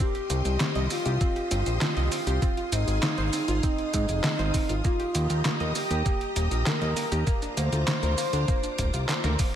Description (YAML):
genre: synthwave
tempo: 99 BPM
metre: 4/4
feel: straight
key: C minor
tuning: A4 = 441 Hz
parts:
  - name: expressive portamento lead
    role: melody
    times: 0.0-9.6 s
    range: Eb4 to C5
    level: -31 LUFS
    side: right 1 dB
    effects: wide subtle chorus, cassette tape, ping-pong delay
  - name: string machine, full ensemble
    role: sustained chords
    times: 0.0-9.6 s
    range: F4 to Eb6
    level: -34 LUFS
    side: left 1 dB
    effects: ensemble chorus, sidechain pumping
  - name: analog pluck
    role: arpeggios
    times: 0.0-9.5 s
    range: Bb3 to Eb5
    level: -36 LUFS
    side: right 2 dB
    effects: chorus, ping-pong delay
  - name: detuned 8-bit digital drum machine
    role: drums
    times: 0.0-9.5 s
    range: handclaps, hi-hat, shaker, snare drum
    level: -29 LUFS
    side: equal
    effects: overdrive, gated reverb
  - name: electronic kick drum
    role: drums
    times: 0.0-9.5 s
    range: none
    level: -27 LUFS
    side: equal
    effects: overdrive
  - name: fat analog bass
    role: bass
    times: 0.3-9.4 s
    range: D1 to Ab2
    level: -26 LUFS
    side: equal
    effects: tube saturation
room: light reverb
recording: none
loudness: -24 LUFS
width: side -10 dB against mid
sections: 0.0-9.6 A section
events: drum fill 9.1-9.6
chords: 0.0 Cm; 2.4 Ab6; 4.8 Eb; 7.3 Bbadd9/D